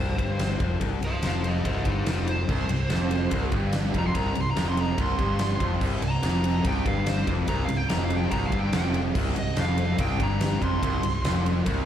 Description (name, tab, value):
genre	hard rock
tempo	144 BPM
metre	4/4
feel	straight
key	unclear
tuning	A4 = 442 Hz
part	smooth overdriven lead guitar	melody	0.0-11.8 s	Eb4 to C6	-32 LUFS	right 1 dB	plate reverb, slapback echo, analog delay
part	distorted electric guitar	riff	0.0-11.9 s	C2 to G2	-30 LUFS	left 7 dB	overdrive, slapback echo
part	fingered electric bass	bass	0.0-11.9 s	C1 to G1	-28 LUFS	equal	none
part	huge arena drum kit	drums	0.2-11.8 s	crash cymbal, kick drum, ride cymbal, snare drum	-29 LUFS	equal	none
part	distorted electric guitar	riff	2.5-11.9 s	C2 to G2	-33 LUFS	right 1 dB	none
part	heavy high-gain guitar	riff	2.5-11.9 s	C2 to G2	-30 LUFS	right 8 dB	distortion
room	light reverb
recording	live gig heard through the venue's PA, club reverb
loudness	-23 LUFS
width	side -10 dB against mid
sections	0.0-11.9 A section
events	lead electric guitar solo 0.0-11.9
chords	0.0 Cm